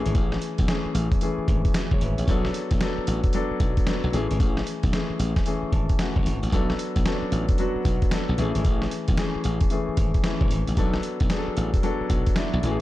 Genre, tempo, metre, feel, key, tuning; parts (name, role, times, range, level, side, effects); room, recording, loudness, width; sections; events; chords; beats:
R&B, new jack swing; 113 BPM; 4/4; swing 64% on 16ths; B dorian; A4 = 440 Hz
dark grand piano; accompaniment; 0.0-12.8 s; E3 to A5; -27 LUFS; left 2 dB
glassy slap bass; bass; 0.1-12.8 s; F#1 to B1; -26 LUFS; equal
dusty soul sampler-style drum kit; drums; 0.1-12.8 s; hi-hat, kick drum, snare drum; -24 LUFS; equal
light reverb, digital ambience; dark, warm production; -21 LUFS; side -16 dB against mid
0.0-12.8 A section
grand piano fill 5.5-6.5
0.0 Amaj7; 2.3 Bm7; 4.1 Amaj7; 6.5 Bm7; 8.4 Amaj7; 10.8 Bm7
| 0.15 0.68 1.21 1.75 | 2.28 2.81 3.34 3.87 | 4.40 4.93 5.46 5.99 | 6.52 7.05 7.59 8.12 | 8.65 9.18 9.71 10.24 | 10.77 11.30 11.83 12.36